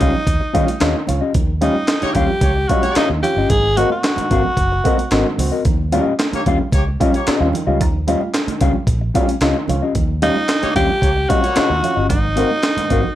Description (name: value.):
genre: funk.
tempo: 112 BPM.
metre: 4/4.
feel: straight.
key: Eb mixolydian.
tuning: A4 = 437 Hz.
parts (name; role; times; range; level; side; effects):
raspy tenor saxophone; melody; 0.0-5.3, 10.2-13.2 s; Eb4 to Ab4; -19 LUFS; equal; none.
mellow electric guitar; accompaniment; 0.0-13.1 s; C4 to F5; -21 LUFS; left 6 dB; none.
dark upright piano; stabs; 0.0-13.0 s; Ab2 to Gb4; -22 LUFS; right 3 dB; none.
vintage muted fingered electric bass; bass; 0.0-13.0 s; Gb1 to Eb3; -20 LUFS; equal; none.
breakbeat sampler-style drum kit; drums; 0.0-13.0 s; handclaps, hi-hat, kick drum, snare drum; -20 LUFS; equal; none.
congas; percussion; 0.0-13.2 s; none; -30 LUFS; right 8 dB; none.
warm horn section; second line; 2.0-3.1, 6.3-11.8 s; G3 to Db5; -24 LUFS; left 1 dB; none.
room: light reverb.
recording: none.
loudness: -14 LUFS.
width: side -13 dB against mid.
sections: 0.0-13.2 A section.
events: none.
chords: 0.0 Eb9; 3.5 Ab9; 5.7 Eb9; 12.1 Ab9.